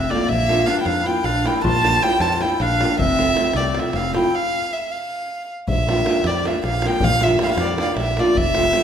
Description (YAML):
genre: balkan folk, Balkan wedding band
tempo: 312 BPM (eighths)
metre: 7/8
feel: straight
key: unclear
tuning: A4 = 440 Hz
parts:
  - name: warm violin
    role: melody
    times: 0.0-8.8 s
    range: D5 to A5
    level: -21 LUFS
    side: equal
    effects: none
  - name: warm clarinet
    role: second line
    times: 0.0-4.3 s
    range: A3 to F4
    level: -24 LUFS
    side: left 1 dB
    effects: none
  - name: fingered electric bass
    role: bass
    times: 0.0-8.7 s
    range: F1 to F2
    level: -24 LUFS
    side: equal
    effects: none
  - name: davul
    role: percussion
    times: 0.0-8.8 s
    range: none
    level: -26 LUFS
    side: equal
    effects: none
  - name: flamenco guitar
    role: accompaniment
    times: 0.1-8.8 s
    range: F3 to F4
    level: -23 LUFS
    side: right 1 dB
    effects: none
room: wet recital hall reverb, RT60 1.6 s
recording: minimal, uncompressed stereo recording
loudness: -17 LUFS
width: side -8 dB against mid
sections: 0.0-5.7 A section; 5.7-8.8 A section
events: stop 4.3-5.7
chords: 0.3 Bb; 3.0 F; 5.7 Bb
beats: 0.10 | 0.30 0.49 0.68 0.87 1.06 1.26 1.45 | 1.64 1.83 2.03 2.22 2.41 2.60 2.79 | 2.99 3.18 3.37 3.56 3.76 3.95 4.14 | 4.33 4.52 4.72 4.91 5.10 5.29 5.48 | 5.68 5.87 6.06 6.25 6.44 6.63 6.83 | 7.02 7.21 7.40 7.59 7.78 7.97 8.16 | 8.36 8.55 8.74